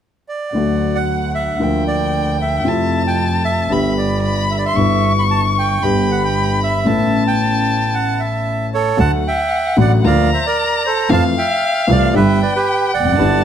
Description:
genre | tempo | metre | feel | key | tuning
tango | 114 BPM | 4/4 | rubato | unclear | A4 = 442 Hz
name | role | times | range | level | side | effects
bandoneon | melody | 0.3-13.4 s | G4 to B5 | -20 LUFS | right 4 dB | none
warm violin | second line | 0.5-13.4 s | F5 to C#6 | -21 LUFS | left 3 dB | none
warm concert grand piano | accompaniment | 0.5-13.4 s | G1 to G4 | -18 LUFS | left 2 dB | none
clear double bass | bass | 0.5-13.4 s | F1 to F2 | -20 LUFS | right 2 dB | none
room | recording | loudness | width
light reverb | none | -14 LUFS | side -9 dB against mid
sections
0.6-9.0 A section; 9.0-13.4 B section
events
none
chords
0.0 N.C.; 0.6 D; 1.6 Bb/D; 2.7 Fmaj7; 3.7 G; 4.8 Em7/G; 5.8 G; 6.9 Aadd9; 9.0 D; 10.1 Bb/D; 11.1 Fmaj7; 12.1 G

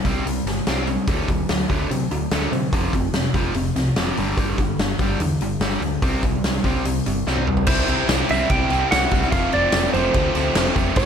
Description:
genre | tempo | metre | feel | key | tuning
classic rock | 146 BPM | 4/4 | straight | unclear | A4 = 438 Hz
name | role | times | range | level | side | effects
overdriven electric guitar | riff | 0.0-11.1 s | F2 to E4 | -23 LUFS | left 1 dB | none
picked electric bass | bass | 0.0-11.1 s | F1 to C3 | -26 LUFS | equal | none
huge arena drum kit | drums | 0.0-11.1 s | crash cymbal, hi-hat, kick drum, snare drum, toms | -22 LUFS | equal | none
clean lap steel guitar | melody | 7.7-11.1 s | C5 to G5 | -22 LUFS | right 2 dB | slapback echo
tambourine | percussion | 7.7-11.1 s | none | -40 LUFS | right 17 dB | none
room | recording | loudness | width
light reverb, small room reverb | none | -18 LUFS | side -7 dB against mid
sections
0.0-7.7 A section; 7.7-11.1 B section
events
drum fill 7.3-7.7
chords
0.0 C5; 1.1 D; 2.7 F5; 4.2 G5; 6.0 C5; 7.7 C; 9.3 F

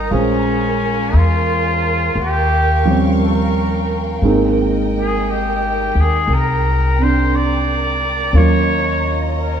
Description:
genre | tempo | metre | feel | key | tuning
jazz ballad | 58 BPM | 4/4 | swing 68% on 8ths | Eb major | A4 = 437 Hz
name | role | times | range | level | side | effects
trumpet with straight mute | melody | 0.0-9.6 s | Db4 to D5 | -20 LUFS | left 1 dB | none
warm concert grand piano | accompaniment | 0.0-9.6 s | F3 to C5 | -19 LUFS | right 2 dB | none
warm studio string section | sustained chords | 0.0-9.6 s | Bb4 to Db6 | -25 LUFS | right 3 dB | none
upright bass | bass | 0.0-9.6 s | Ab1 to Fb2 | -18 LUFS | equal | none
room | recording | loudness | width
wet echo chamber reverb, RT60 2.3 s | heard from further back in the room | -14 LUFS | side -8 dB against mid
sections
0.0-9.6 A section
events
none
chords
0.1 Bbm9; 2.2 Eb13; 4.2 Abmaj7; 8.3 Ebm7

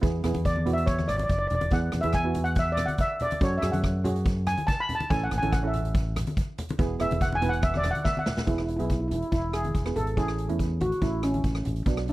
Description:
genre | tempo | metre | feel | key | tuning
calypso | 142 BPM | 4/4 | straight | A major | A4 = 441 Hz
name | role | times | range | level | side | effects
steel pan | accompaniment | 0.0-12.1 s | F#3 to B4 | -32 LUFS | right 4 dB | none
overdriven fingered electric bass | bass | 0.0-12.1 s | E1 to F#2 | -28 LUFS | equal | none
street-band drum kit | drums | 0.0-12.1 s | hi-hat, kick drum, rim click, snare drum | -28 LUFS | equal | none
congas | percussion | 0.2-11.8 s | none | -34 LUFS | left 1 dB | none
steel pan | melody | 0.5-12.1 s | C#4 to B5 | -28 LUFS | equal | none
room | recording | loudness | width
little or no reverb | dry, close 1970s-style studio recording | -24 LUFS | side -18 dB against mid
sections
0.0-8.5 A section; 8.5-12.1 B section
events
steel pan solo 0.0-8.5; drum fill 8.0-8.5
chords
0.0 E; 3.4 F#sus2; 5.1 A; 6.8 E; 10.2 A

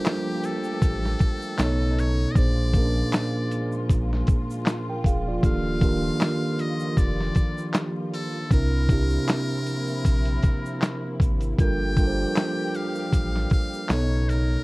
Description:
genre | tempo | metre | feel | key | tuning
lo-fi hip hop | 78 BPM | 4/4 | swing 57% on 16ths | G minor | A4 = 441 Hz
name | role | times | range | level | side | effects
trumpet with metal mute | melody | 0.0-14.6 s | G4 to G5 | -33 LUFS | left 2 dB | plate reverb
mellow tine electric piano | accompaniment | 0.0-14.6 s | Bb2 to G5 | -27 LUFS | right 1 dB | plate reverb
dark studio string section | sustained chords | 0.0-14.6 s | C#3 to G4 | -34 LUFS | left 1 dB | plate reverb
dusty soul sampler-style drum kit | drums | 0.0-14.5 s | handclaps, hi-hat, kick drum, snare drum | -22 LUFS | equal | vintage 12-bit sampler grit
egg shaker | percussion | 0.1-14.5 s | none | -51 LUFS | right 3 dB | none
sub bass with octave | bass | 0.8-14.6 s | Eb1 to C2 | -26 LUFS | equal | none
room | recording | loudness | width
light reverb | dark, warm production, vinyl crackle | -21 LUFS | side -22 dB against mid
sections
0.0-14.6 A section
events
none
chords
0.0 Gm9; 1.6 B9; 2.4 Bb7; 5.4 Ebmaj9#11; 8.5 C9; 11.6 Gm9; 13.9 B9

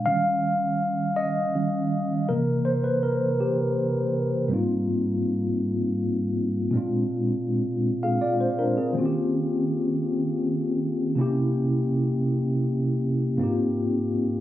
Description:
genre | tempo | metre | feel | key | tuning
R&B | 54 BPM (dotted quarters) | 6/8 | straight | Ab major | A4 = 441 Hz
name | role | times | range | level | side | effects
mellow tine electric piano | solo | 0.0-14.4 s | Ab2 to F5 | -22 LUFS | equal | medium stereo tremolo
room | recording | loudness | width
light reverb, digital ambience | recorded on a phone in the room, club ambience, compression | -22 LUFS | side -13 dB against mid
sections
0.0-4.5 A section; 4.5-14.4 A section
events
tine electric piano solo 0.0-4.5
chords
0.1 Eb9; 2.3 C7; 4.5 Abmaj13; 6.7 Bb7; 8.9 Eb13; 11.2 C7b9; 13.4 Abmaj13

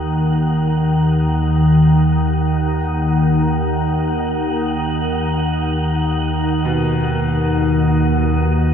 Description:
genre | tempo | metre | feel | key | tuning
dark ambient drone | free time | none | none | unclear | A4 = 441 Hz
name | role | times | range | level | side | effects
bright baby grand piano | arpeggios | 0.0-8.7 s | B2 | -25 LUFS | left 2 dB | ping-pong delay
organ-like drone | drone | 0.0-8.7 s | Eb2 to Eb3 | -15 LUFS | equal | ensemble chorus, built-in reverb
wind-like tuned noise texture | texture | 0.0-8.7 s | Gb5 | -28 LUFS | equal | built-in reverb
room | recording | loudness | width
wet cathedral reverb, RT60 6.1 s | cassette tape | -15 LUFS | side -8 dB against mid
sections
0.0-8.7 A section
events
fade-in on grand piano 0.0-8.7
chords
0.0 Ebm; 2.6 B

